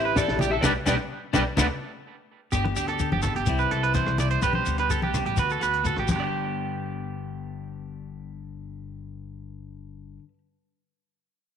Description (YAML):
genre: highlife guitar band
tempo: 126 BPM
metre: 4/4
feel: straight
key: G major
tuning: A4 = 438 Hz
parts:
  - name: clean electric guitar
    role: melody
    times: 0.0-1.7 s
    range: G4 to G5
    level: -28 LUFS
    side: left 3 dB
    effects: ensemble chorus
  - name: clean electric guitar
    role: accompaniment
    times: 0.0-10.4 s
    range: G2 to G4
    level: -32 LUFS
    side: left 11 dB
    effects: spring reverb
  - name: electric guitar at the edge of break-up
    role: arpeggios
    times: 0.0-10.2 s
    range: G4 to D5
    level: -27 LUFS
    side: right 9 dB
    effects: tape echo
  - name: upright bass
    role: bass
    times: 0.0-10.2 s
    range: G1 to D2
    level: -31 LUFS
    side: equal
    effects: none
  - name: compact cocktail drum kit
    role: drums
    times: 0.2-6.2 s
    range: crash cymbal, hi-hat, kick drum, rim click, snare drum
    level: -31 LUFS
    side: equal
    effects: none
  - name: shekere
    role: percussion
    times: 0.2-6.5 s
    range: none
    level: -32 LUFS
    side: left 6 dB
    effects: none
  - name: congas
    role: percussion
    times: 0.4-6.5 s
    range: none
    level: -31 LUFS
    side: equal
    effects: none
room: light reverb, studio reverb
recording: 1960s-style stereo with parts hard left and right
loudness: -23 LUFS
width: side -8 dB against mid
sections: 0.0-2.5 A section; 2.5-6.3 B section; 6.3-10.1 C section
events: band accent 0.6-2.5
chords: 0.0 C; 0.6 G/B; 1.6 D5; 2.5 G; 3.5 C; 4.4 G/B; 5.4 D6; 6.1 G